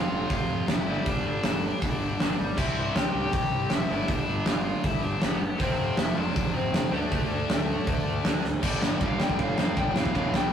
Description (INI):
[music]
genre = punk rock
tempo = 158 BPM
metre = 4/4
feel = straight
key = G mixolydian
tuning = A4 = 440 Hz
[part]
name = dark smooth lead guitar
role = melody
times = 0.0-10.5 s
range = A3 to G5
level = -31 LUFS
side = left 2 dB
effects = overdrive
[part]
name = crunchy overdriven guitar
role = riff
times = 0.0-10.5 s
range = E2 to D4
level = -33 LUFS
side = right 4 dB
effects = none
[part]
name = tight distorted guitar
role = riff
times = 0.0-10.5 s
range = E2 to D4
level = -34 LUFS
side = left 4 dB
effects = distortion
[part]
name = fuzz picked electric bass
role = bass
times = 0.0-10.5 s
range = E1 to F2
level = -34 LUFS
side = equal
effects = overdrive
[part]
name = big rock drum kit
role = drums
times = 0.3-10.4 s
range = crash cymbal, hi-hat, kick drum, ride cymbal, snare drum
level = -27 LUFS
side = equal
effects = none
[part]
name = crunchy overdriven guitar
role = riff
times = 8.6-10.5 s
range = E3 to G4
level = -35 LUFS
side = right 1 dB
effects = none
[sound]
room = moderate studio reverb, RT60 0.6 s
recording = rough rehearsal-room recording, warm saturation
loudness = -24 LUFS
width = side -8 dB against mid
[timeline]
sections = 0.0-8.6 A section; 8.6-10.5 B section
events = half time 0.0-8.6; drum fill 8.4; lead electric guitar solo 8.6-10.5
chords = 0.0 F5; 0.9 G5; 2.6 C; 3.9 G; 5.6 F5; 6.9 D5; 8.6 G; 10.0 Em